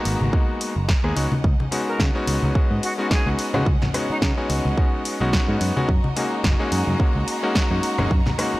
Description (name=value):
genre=nu-disco, nu disco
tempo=108 BPM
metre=4/4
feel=swing 56% on 16ths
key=unclear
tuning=A4 = 440 Hz
part: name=clear electric grand piano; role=accompaniment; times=0.0-8.6 s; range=Ab3 to Ab4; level=-24 LUFS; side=left 1 dB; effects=sidechain pumping, analog delay
part: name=clear studio violin section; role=sustained chords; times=0.0-8.6 s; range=Ab3 to Bb5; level=-33 LUFS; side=equal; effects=sidechain pumping
part: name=picked electric bass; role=bass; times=0.1-8.6 s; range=Gb1 to Db3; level=-24 LUFS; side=equal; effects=none
part: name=house drum kit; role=drums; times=0.1-8.5 s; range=hi-hat, rim click, snare drum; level=-28 LUFS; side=equal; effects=none
part: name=congas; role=percussion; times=0.2-8.4 s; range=none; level=-27 LUFS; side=left 1 dB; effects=none
part: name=electronic kick drum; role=drums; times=0.3-8.2 s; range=none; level=-20 LUFS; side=equal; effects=none
part: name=breathy bright jazz flute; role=melody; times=1.9-4.3 s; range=Eb4 to Bb4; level=-31 LUFS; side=equal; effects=analog delay
room=light reverb, small room reverb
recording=dry, gritty hardware recording, transformer saturation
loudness=-19 LUFS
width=side -18 dB against mid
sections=0.0-8.6 A section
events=none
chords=0.0 Abm9; 1.2 Db9sus4; 5.9 Gb6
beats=0.33 0.89 | 1.44 2.00 2.56 3.11 | 3.67 4.22 4.78 5.33 | 5.89 6.44 7.00 7.55 | 8.11